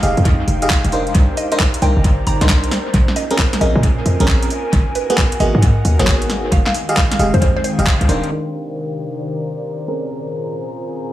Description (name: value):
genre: UK garage, two-step garage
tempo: 134 BPM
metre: 4/4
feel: swing 65% on 16ths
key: unclear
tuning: A4 = 440 Hz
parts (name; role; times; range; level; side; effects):
- airy breathy pad; sustained chords; 0.0-11.1 s; Bb2 to D5; -29 LUFS; equal; chorus, sidechain pumping
- FM electric piano; stabs; 0.0-11.1 s; Bb3 to F5; -22 LUFS; right 1 dB; chorus, dub echo
- short 808-style bass; bass; 0.0-8.2 s; Eb1 to Bb2; -16 LUFS; equal; none
- garage drum kit; drums; 0.0-11.1 s; handclaps, hi-hat, snare drum; -22 LUFS; equal; dub echo
- airy breathy pad; texture; 0.0-11.1 s; Eb3 to Bb5; -26 LUFS; left 1 dB; chorus, sidechain pumping
- electronic kick drum; drums; 0.3-8.0 s; none; -16 LUFS; equal; none
- mallet-like synth pluck; melody; 1.4-7.7 s; Cb5 to Bb5; -24 LUFS; right 1 dB; chorus, phaser, dub echo
room: light reverb, digital ambience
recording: echo-heavy mix, low-pass filter, studio reverb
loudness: -14 LUFS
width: side -14 dB against mid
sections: 0.0-8.3 A section; 8.3-11.1 B section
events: band accent 7.9; filter sweep 8.3-11.1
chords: 0.0 Fm9; 1.1 Cm9; 2.7 Bbm9; 4.5 Abm9; 6.5 Fm9; 8.3 Cm9; 9.9 Bbm9